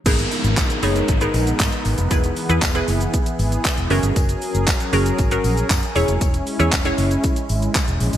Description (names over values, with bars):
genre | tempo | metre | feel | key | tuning
dance-pop | 117 BPM | 4/4 | straight | G# minor | A4 = 439 Hz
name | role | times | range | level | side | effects
glassy wavetable pluck | accompaniment | 0.1-7.6 s | B3 to C#5 | -23 LUFS | right 1 dB | chorus, sidechain pumping
sweeping resonant pad | sustained chords | 0.1-8.2 s | E3 to A#4 | -25 LUFS | left 1 dB | chorus, sidechain pumping
vintage muted fingered electric bass | bass | 0.1-8.2 s | E1 to G#2 | -21 LUFS | equal | sidechain pumping
pop drum kit | drums | 0.1-8.2 s | crash cymbal, handclaps, hi-hat, kick drum, shaker | -21 LUFS | equal | gated reverb
tambourine | percussion | 0.1-8.1 s | none | -36 LUFS | left 8 dB | none
downlifter | sound effects | 0.1-4.2 s | none | -29 LUFS | equal | none
room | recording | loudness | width
moderate lush hall reverb, RT60 1.9 s | bright 1980s-style digital production | -17 LUFS | side -11 dB against mid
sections
0.1-8.2 A section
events
none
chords
0.1 G#madd9; 2.1 E; 3.9 F#add9; 6.0 C#m/E